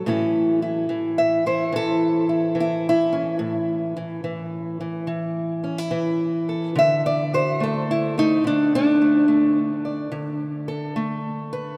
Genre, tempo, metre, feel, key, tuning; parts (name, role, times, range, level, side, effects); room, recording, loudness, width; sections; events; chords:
acoustic country blues, solo or duo; 71 BPM; 4/4; swing 67% on 8ths; A major; A4 = 444 Hz
fingerpicked old ladder-braced acoustic guitar; solo; 0.0-11.8 s; A2 to E5; -22 LUFS; equal
wet cathedral reverb, RT60 5.5 s; in a vast, echoing space; -22 LUFS; mono
0.0-11.8 A section
steel-string acoustic guitar solo 0.0-11.8
0.1 A; 6.8 D5